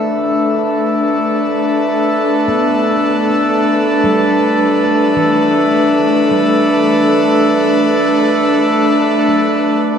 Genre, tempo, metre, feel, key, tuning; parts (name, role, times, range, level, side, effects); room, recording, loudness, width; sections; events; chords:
ambient; 55 BPM; 3/4; straight; G major; A4 = 439 Hz
airy breathy pad; sustained chords; 0.0-10.0 s; A3 to B4; -12 LUFS; equal; chorus, shimmer reverb
handpan; arpeggios; 0.0-10.0 s; E3 to D4; -25 LUFS; left 4 dB; ping-pong delay, shimmer reverb
hand-pumped harmonium; drone; 0.0-10.0 s; A3 to A4; -18 LUFS; left 1 dB
wet cathedral reverb, RT60 6.1 s; in a vast, echoing space; -11 LUFS; side -7 dB against mid
0.0-9.9 A section
fade-out on handpan 0.0-9.9
0.0 Gadd9